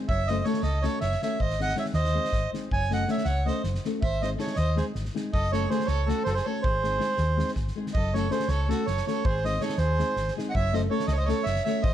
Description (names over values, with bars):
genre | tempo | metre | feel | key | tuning
balkan folk, Balkan wedding band | 321 BPM (eighths) | 7/8 | straight | unclear | A4 = 441 Hz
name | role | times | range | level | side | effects
nylon-string guitar | accompaniment | 0.0-11.8 s | G#3 to A4 | -30 LUFS | left 4 dB | none
accordion | melody | 0.1-11.9 s | A4 to G#5 | -29 LUFS | right 3 dB | plate reverb
dark violin | second line | 0.1-11.9 s | F#4 to D#5 | -37 LUFS | right 3 dB | none
hollow-body short-scale fingered electric bass | bass | 0.1-11.9 s | F#1 to D#2 | -27 LUFS | equal | none
loose indie drum kit | percussion | 0.1-11.9 s | kick drum, snare drum | -33 LUFS | equal | none
room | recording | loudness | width
light reverb | dark, warm production | -24 LUFS | side -11 dB against mid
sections
0.0-7.9 A section; 7.9-11.9 A section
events
none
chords
0.1 F#m; 1.4 G#; 2.7 F#m; 4.0 G#; 5.3 F#m; 6.6 G#; 7.9 F#m; 9.2 G#; 10.5 F#m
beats
| 0.09 0.28 0.46 0.65 0.84 1.03 1.21 | 1.40 1.59 1.78 1.96 2.15 2.34 2.53 | 2.71 2.90 3.09 3.27 3.46 3.65 3.84 | 4.02 4.21 4.40 4.58 4.77 4.96 5.15 | 5.33 5.52 5.71 5.89 6.08 6.27 6.45 | 6.64 6.83 7.01 7.20 7.39 7.57 7.76 | 7.95 8.13 8.32 8.50 8.69 8.88 9.06 | 9.25 9.43 9.62 9.80 9.99 10.18 10.36 | 10.55 10.73 10.92 11.10 11.29 11.47 11.66 | 11.84